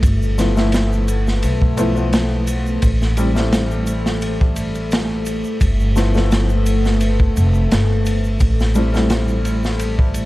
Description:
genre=trip hop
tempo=86 BPM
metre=4/4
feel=swing 53% on 16ths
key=unclear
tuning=A4 = 441 Hz
part: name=dark analog pad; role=sustained chords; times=0.0-10.3 s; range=A3 to A4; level=-24 LUFS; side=equal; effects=chorus
part: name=upright bass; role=bass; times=0.0-10.3 s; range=F1 to B1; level=-18 LUFS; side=equal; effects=none
part: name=crunchy breakbeat drum kit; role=drums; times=0.0-10.3 s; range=kick drum, ride cymbal, snare drum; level=-20 LUFS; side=equal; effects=none
part: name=tube shaker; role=percussion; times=0.0-10.3 s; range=none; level=-37 LUFS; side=right 5 dB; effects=none
part: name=felt-muted upright piano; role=accompaniment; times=0.4-10.3 s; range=F3 to E4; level=-22 LUFS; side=left 1 dB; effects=harmonic tremolo, vintage 12-bit sampler grit, tape echo
room=little or no reverb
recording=dark, warm production, vinyl crackle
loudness=-15 LUFS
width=side -18 dB against mid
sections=0.0-10.3 A section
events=none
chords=0.0 G13; 2.8 Am7; 5.6 G13; 8.4 Am7

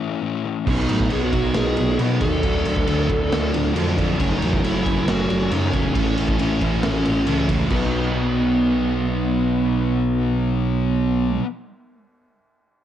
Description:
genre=quiet-loud alternative rock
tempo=136 BPM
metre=4/4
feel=straight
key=B mixolydian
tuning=A4 = 440 Hz
part: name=thick fuzz guitar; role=riff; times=0.0-11.4 s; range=F#2 to E4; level=-24 LUFS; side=left 8 dB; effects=distortion
part: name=dark smooth lead guitar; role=melody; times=0.7-11.4 s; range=B3 to A4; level=-25 LUFS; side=right 1 dB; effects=overdrive, cassette tape, analog delay
part: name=sludgy distorted guitar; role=riff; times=0.7-11.4 s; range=F#2 to E4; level=-24 LUFS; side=right 7 dB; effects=overdrive
part: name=growling FM bass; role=bass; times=0.7-11.4 s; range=E1 to B2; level=-25 LUFS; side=right 1 dB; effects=none
part: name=raw garage drum kit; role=drums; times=0.7-7.8 s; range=crash cymbal, kick drum, ride cymbal, snare drum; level=-25 LUFS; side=right 1 dB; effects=cassette tape
room=light reverb, studio reverb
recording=home recording on cassette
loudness=-18 LUFS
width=side -10 dB against mid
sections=0.0-7.7 A section; 7.7-11.2 B section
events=none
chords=0.0 A; 0.7 B; 2.4 D; 4.2 F#m; 6.0 A; 7.7 B

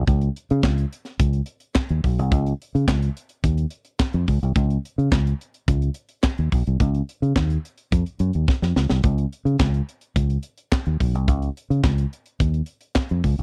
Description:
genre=disco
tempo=107 BPM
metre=4/4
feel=straight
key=Db major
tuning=A4 = 440 Hz
part: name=fingered electric bass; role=bass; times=0.0-13.4 s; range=Cb2 to Db3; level=-23 LUFS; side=equal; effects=none
part: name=tight funk drum kit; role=drums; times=0.1-13.4 s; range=handclaps, hi-hat, kick drum, snare drum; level=-23 LUFS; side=equal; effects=none
room=little or no reverb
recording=dry, close 1970s-style studio recording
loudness=-23 LUFS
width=mono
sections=0.1-13.4 A section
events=drum fill 8.5-9.0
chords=none

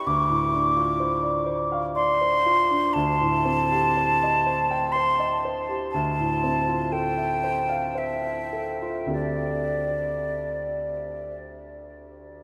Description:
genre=classical, impressionist duo for flute and grand piano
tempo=51-65 BPM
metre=3/4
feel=rubato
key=unclear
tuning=A4 = 439 Hz
part: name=concert flute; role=melody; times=0.0-11.3 s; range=D5 to D6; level=-26 LUFS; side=equal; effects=none
part: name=warm grand piano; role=accompaniment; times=0.0-12.4 s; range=D2 to G5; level=-30 LUFS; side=equal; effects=none
room=wet huge ambient reverb, RT60 7.3 s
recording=in a vast, echoing space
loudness=-24 LUFS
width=mono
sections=0.0-12.4 A section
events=none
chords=0.1 Dm7; 3.0 Cm6/D; 5.9 Dm9; 9.1 D7sus4

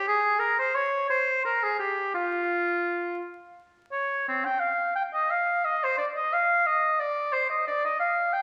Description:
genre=classical, baroque-style fantasia for unaccompanied oboe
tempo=58 BPM (dotted quarters)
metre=6/8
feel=rubato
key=F minor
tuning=A4 = 440 Hz
part: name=warm oboe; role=solo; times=0.0-8.4 s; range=C4 to G5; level=-26 LUFS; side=equal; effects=none
room=wet recital hall reverb, RT60 1.4 s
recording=heard from further back in the room, vinyl crackle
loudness=-26 LUFS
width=mono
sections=0.0-4.3 A section; 4.3-8.4 A section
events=none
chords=none

